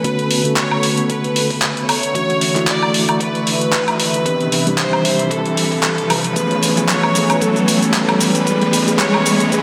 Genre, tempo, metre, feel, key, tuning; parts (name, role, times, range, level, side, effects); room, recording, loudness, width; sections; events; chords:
nu-disco, nu disco; 114 BPM; 4/4; swing 55% on 16ths; A major; A4 = 440 Hz
rich chamber violin section; melody; 0.0-9.6 s; A4 to D5; -23 LUFS; equal; diffuse ambient delay
mellow tine electric piano; accompaniment; 0.0-9.6 s; D3 to A4; -22 LUFS; equal; sidechain pumping, diffuse ambient delay
lush unison pad; sustained chords; 0.0-9.6 s; C3 to C#6; -26 LUFS; equal; chorus, sidechain pumping
dusty soul sampler-style drum kit; drums; 0.0-9.6 s; cabasa, handclaps, hi-hat, woodblock; -21 LUFS; equal
electronic kick drum; drums; 0.0-9.6 s; -33 LUFS; equal
riser; sound effects; 0.0-9.6 s; -25 LUFS; equal
wet lush hall reverb, RT60 1.9 s; dreamy mix soaked in reverb; -16 LUFS; mono
0.0-9.6 A section
build-up 0.0-9.6; riser 0.0-9.6
0.0 Bm7; 1.9 Dmaj9; 4.3 Cmaj7; 6.4 Amaj9/E